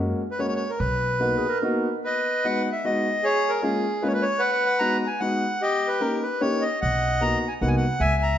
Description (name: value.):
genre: musette waltz.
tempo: 150 BPM.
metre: 3/4.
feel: swing 55% on 8ths, rubato.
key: G# minor.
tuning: A4 = 440 Hz.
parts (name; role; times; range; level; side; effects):
warm upright piano; accompaniment; 0.0-7.8 s; G#3 to G4; -27 LUFS; left 2 dB; none.
upright bass; bass; 0.0-1.3, 6.8-8.4 s; B1 to F#2; -26 LUFS; right 1 dB; none.
accordion; melody; 0.3-8.4 s; G4 to A#5; -23 LUFS; equal; none.
warm clarinet; second line; 1.2-2.0 s; G#4 to B4; -28 LUFS; right 5 dB; none.
room: moderate recital hall reverb, RT60 1.4 s.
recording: nothing above 7.6 kHz.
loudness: -21 LUFS.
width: side -10 dB against mid.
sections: 0.0-2.0 A section; 2.0-8.4 B section.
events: none.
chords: 0.0 F#add9; 0.8 Bmaj7; 2.0 G#m7; 3.2 A#m7; 4.4 G#m7; 5.6 D#7; 6.8 Bmaj7.